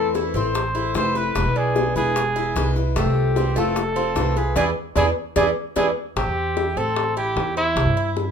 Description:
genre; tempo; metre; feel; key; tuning
latin, Cuban son and guajira; 150 BPM; 4/4; straight; A minor; A4 = 439 Hz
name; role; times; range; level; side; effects
warm trumpet; melody; 0.0-8.1 s; E4 to C5; -24 LUFS; right 1 dB; none
picked acoustic archtop guitar; accompaniment; 0.0-5.9 s; B2 to F4; -26 LUFS; left 4 dB; none
Cuban tres; arpeggios; 0.0-8.3 s; A3 to C5; -27 LUFS; right 4 dB; none
upright bass; bass; 0.0-8.3 s; E1 to G2; -24 LUFS; equal; none
bongos; percussion; 0.2-8.3 s; none; -27 LUFS; left 5 dB; none
room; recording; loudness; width
light reverb; minimal, uncompressed stereo recording; -19 LUFS; side -7 dB against mid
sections
0.0-6.2 A section; 6.2-8.3 A section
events
band accent 4.6-6.2; drum fill 5.4-6.2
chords
0.0 Am; 1.4 E7; 3.0 Fmaj7; 4.6 E7; 6.2 Am7; 7.8 C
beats
0.15 0.55 0.95 | 1.36 1.76 2.16 2.56 | 2.96 3.36 3.76 4.16 | 4.57 4.97 5.37 5.77 | 6.17 6.57 6.97 7.37 | 7.77 8.16

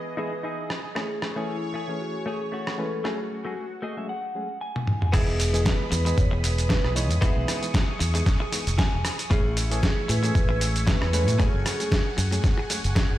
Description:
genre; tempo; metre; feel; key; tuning
nu-disco, nu disco; 115 BPM; 4/4; swing 55% on 16ths; E major; A4 = 442 Hz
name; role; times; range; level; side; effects
vibraphone with medium mallets; melody; 0.0-13.2 s; E4 to E5; -33 LUFS; equal; ping-pong delay
lush unison pad; sustained chords; 0.0-13.2 s; E3 to D#6; -36 LUFS; right 1 dB; chorus, phaser, vintage 12-bit sampler grit, sidechain pumping
reed electric piano; accompaniment; 0.2-12.8 s; E3 to D#5; -33 LUFS; equal; fast tremolo, ping-pong delay
direct-recorded clean electric guitar; riff; 0.2-13.1 s; A3 to G#5; -34 LUFS; left 2 dB; lush chorus, low-pass filter, ping-pong delay
dusty soul sampler-style drum kit; drums; 0.7-13.1 s; crash cymbal, hi-hat, rim click, shaker, snare drum, toms; -28 LUFS; equal; overdrive
fingered electric bass with an envelope filter; bass; 5.1-13.2 s; E1 to A2; -24 LUFS; equal; tube saturation
electronic kick drum; drums; 5.1-13.1 s; none; -23 LUFS; equal; overdrive
room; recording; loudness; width
light reverb, digital ambience; played on a big sound system in a bare room, stone room reverb; -22 LUFS; side -14 dB against mid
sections
0.0-5.1 A section; 5.1-13.2 B section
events
clean electric guitar fill 3.6-5.1, 8.5-9.3; drum fill 4.7-5.1; drop 5.1-13.2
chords
0.0 Emaj7; 1.0 Amaj7; 3.0 F#madd9; 5.1 Emaj7; 9.3 Amaj7; 11.4 F#madd9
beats
0.44 | 0.96 1.48 2.00 2.53 | 3.05 3.57 4.09 4.61 | 5.13 5.66 6.18 6.70 | 7.22 7.74 8.27 8.79 | 9.31 9.83 10.35 10.87 | 11.40 11.92 12.44 12.96

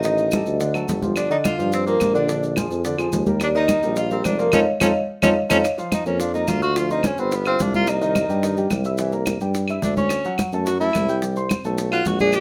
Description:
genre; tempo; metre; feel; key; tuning
Afro-Cuban jazz; 215 BPM; 4/4; straight; Bb major; A4 = 438 Hz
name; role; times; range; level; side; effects
vibraphone with medium mallets; melody; 0.0-5.6 s; Bb4 to F5; -24 LUFS; equal; none
breathy tenor saxophone; second line; 0.0-12.4 s; Bb3 to Ab4; -26 LUFS; equal; none
warm grand piano; accompaniment; 0.0-12.4 s; D3 to G6; -29 LUFS; equal; none
breathy tuba; bass; 0.0-12.4 s; F1 to G2; -27 LUFS; equal; none
maracas; percussion; 0.0-12.4 s; none; -39 LUFS; equal; none
bongos; percussion; 0.1-12.4 s; none; -32 LUFS; equal; none
congas; percussion; 0.1-12.4 s; none; -28 LUFS; equal; none
claves; percussion; 0.3-12.4 s; none; -33 LUFS; equal; none
room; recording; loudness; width
light reverb; none; -21 LUFS; mono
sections
0.0-5.6 A section; 5.6-12.4 B section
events
band accent 4.5-5.6; drum fill 5.1-5.6; tenor saxophone solo 5.6-12.4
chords
0.0 Ebmaj7#11/A; 0.6 D; 1.2 Gm7; 2.3 Bb7; 3.4 Ebadd9; 4.5 Faug7; 5.6 Bb; 6.8 Gadd11; 7.3 G7; 7.9 Cm7; 9.0 C9; 10.1 Dmaj7 (rootless); 11.2 C5; 11.8 B5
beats
| 0.05 0.33 0.61 0.89 | 1.17 1.45 1.73 2.01 | 2.29 2.57 2.85 3.13 | 3.41 3.69 3.96 4.24 | 4.52 4.80 5.08 5.36 | 5.64 5.92 6.20 6.48 | 6.76 7.04 7.32 7.60 | 7.88 8.15 8.43 8.71 | 8.99 9.27 9.55 9.83 | 10.11 10.39 10.67 10.95 | 11.22 11.50 11.78 12.06 | 12.34

